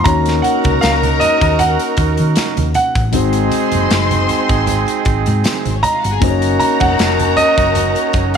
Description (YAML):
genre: lush 1970s-style soul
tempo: 78 BPM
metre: 4/4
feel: swing 54% on 16ths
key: unclear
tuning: A4 = 440 Hz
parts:
  - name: clear grand piano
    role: melody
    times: 0.0-8.3 s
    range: Eb5 to Bb5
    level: -17 LUFS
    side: right 2 dB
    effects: none
  - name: mellow tine electric piano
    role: accompaniment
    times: 0.0-8.4 s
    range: Ab3 to Db5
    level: -21 LUFS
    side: left 12 dB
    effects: none
  - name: hollow-body short-scale fingered electric bass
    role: bass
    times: 0.0-8.3 s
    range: F1 to Eb3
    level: -18 LUFS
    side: equal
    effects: none
  - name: warm studio violin section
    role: second line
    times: 0.1-8.4 s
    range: C4 to C6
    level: -21 LUFS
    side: left 12 dB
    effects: slapback echo
  - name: warm horn section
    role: stabs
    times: 0.1-8.4 s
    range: C4 to Bb4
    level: -19 LUFS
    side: right 14 dB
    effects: none
  - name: modern studio drum kit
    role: drums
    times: 0.1-8.4 s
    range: hi-hat, kick drum, snare drum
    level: -20 LUFS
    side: equal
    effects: none
  - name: congas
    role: percussion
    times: 0.1-8.1 s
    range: none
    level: -25 LUFS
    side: right 5 dB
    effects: none
  - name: tambourine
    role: percussion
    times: 0.8-7.2 s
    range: none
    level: -31 LUFS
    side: left 16 dB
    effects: none
room: light reverb, small room ambience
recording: 1960s-style stereo with parts hard left and right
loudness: -12 LUFS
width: side -7 dB against mid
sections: 0.0-8.4 A section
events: none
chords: 0.1 Ebm7; 3.1 Ab7; 6.2 Ebm7